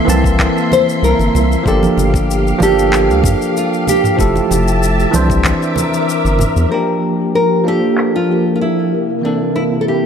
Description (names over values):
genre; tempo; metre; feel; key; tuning
sunset chillout; 95 BPM; 4/4; straight; G dorian; A4 = 440 Hz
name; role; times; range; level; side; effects
bell-like tine electric piano; accompaniment; 0.0-10.1 s; E3 to A5; -17 LUFS; equal; auto-pan, digital delay
soft string machine; sustained chords; 0.0-10.1 s; C3 to D6; -18 LUFS; equal; ensemble chorus
round analog bass; bass; 0.1-6.7 s; F1 to G2; -16 LUFS; equal; none
smooth R&B drum kit; drums; 0.1-10.0 s; crash cymbal, handclaps, shaker, toms; -22 LUFS; left 1 dB; low-pass filter on perc, studio reverb, low-pass filter on snare, low-pass filter on toms, low-pass filter on cymbals
congas; percussion; 0.1-6.5 s; none; -23 LUFS; right 3 dB; none
electronic kick drum; drums; 0.2-5.6 s; none; -18 LUFS; equal; studio reverb
nylon-string guitar; melody; 0.7-10.1 s; D4 to C5; -17 LUFS; right 1 dB; digital delay
room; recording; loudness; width
moderate concert hall reverb, RT60 2.3 s; none; -12 LUFS; side -7 dB against mid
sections
0.0-6.7 A section; 6.7-10.1 B section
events
filter sweep on string machine 6.7-10.1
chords
0.0 C7; 1.7 Gm7; 4.2 Fmaj9; 5.5 C9; 6.7 Gm7; 8.9 C7